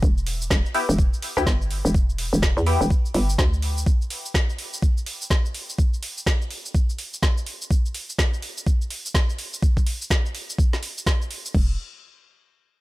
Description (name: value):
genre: bass house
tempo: 125 BPM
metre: 4/4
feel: swing 60% on 16ths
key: E minor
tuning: A4 = 440 Hz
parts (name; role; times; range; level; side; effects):
- hollow knocking FM bass; bass; 0.0-3.9, 11.5-11.8 s; E1 to E2; -22 LUFS; equal; tube saturation, sidechain pumping
- electronic kick drum; drums; 0.0-11.7 s; none; -20 LUFS; equal; overdrive
- garage drum kit; drums; 0.0-11.7 s; crash cymbal, hi-hat, shaker, snare drum; -28 LUFS; equal; overdrive
- band-passed chord stab; stabs; 0.7-2.8 s; B3 to G4; -28 LUFS; left 2 dB; phaser, wide subtle chorus, sidechain pumping, dub echo
room: little or no reverb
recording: none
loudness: -20 LUFS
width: side -18 dB against mid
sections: 0.0-11.5 A section; 11.5-12.8 B section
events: none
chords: 0.0 Em; 3.9 N.C.